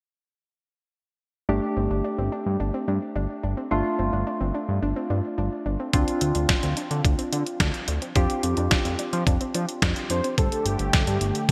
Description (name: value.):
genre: synth-pop.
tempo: 108 BPM.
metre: 4/4.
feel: straight.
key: unclear.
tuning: A4 = 440 Hz.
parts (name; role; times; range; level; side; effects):
soft electric-piano-like synth keys; accompaniment; 1.5-10.3 s; A3 to G4; -31 LUFS; equal; chorus.
soft round pluck; arpeggios; 1.5-10.3 s; C4 to D4; -35 LUFS; equal; chorus, delay.
fat analog bass; bass; 1.5-11.5 s; G1 to F3; -28 LUFS; equal; none.
detuned 8-bit digital drum machine; drums; 5.9-11.5 s; hi-hat, kick drum, snare drum; -26 LUFS; equal; gated reverb.
warm velvety synth lead; melody; 10.1-11.5 s; G4 to C5; -31 LUFS; equal; chorus, tremolo.
brassy analog pad; sustained chords; 10.4-11.5 s; D3 to G4; -31 LUFS; equal; chorus.
room: moderate lush hall reverb, RT60 2.7 s.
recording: bright 1980s-style digital production.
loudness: -25 LUFS.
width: mono.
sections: 1.5-10.4 A section; 10.4-11.5 B section.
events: none.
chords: 1.5 Gsus2; 5.9 Dm7; 8.2 Fsus2; 10.4 Gsus2.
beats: | 1.49 2.05 2.60 3.16 | 3.71 4.27 4.82 5.38 | 5.93 6.49 7.05 7.60 | 8.16 8.71 9.27 9.82 | 10.38 10.94 11.49.